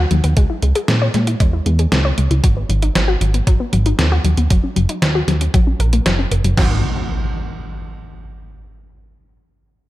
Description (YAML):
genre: synthwave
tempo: 116 BPM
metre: 4/4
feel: straight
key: unclear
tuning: A4 = 435 Hz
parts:
  - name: wide unison pluck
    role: arpeggios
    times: 0.0-6.8 s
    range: F#3 to C#5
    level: -22 LUFS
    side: left 3 dB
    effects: tape echo
  - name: fat analog bass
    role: bass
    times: 0.0-6.8 s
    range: F#1 to A#2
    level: -16 LUFS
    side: equal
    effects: sidechain pumping
  - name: detuned 8-bit digital drum machine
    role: drums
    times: 0.1-6.5 s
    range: hi-hat, snare drum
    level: -21 LUFS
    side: right 1 dB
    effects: gated reverb
  - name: detuned 8-bit digital drum machine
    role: drums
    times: 0.4-6.7 s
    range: crash cymbal, kick drum, snare drum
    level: -16 LUFS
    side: equal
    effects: none
  - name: impact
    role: sound effects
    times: 6.7-8.6 s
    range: none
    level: -24 LUFS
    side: equal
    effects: none
room: light reverb, digital ambience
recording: none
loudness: -14 LUFS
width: side -16 dB against mid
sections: 0.0-6.6 A section; 6.6-8.6 B section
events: filter sweep on synth arpeggio sound 0.0-6.6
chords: 0.4 C#m; 2.4 G#m7; 4.5 D#m7/F#; 6.6 F#sus2/G#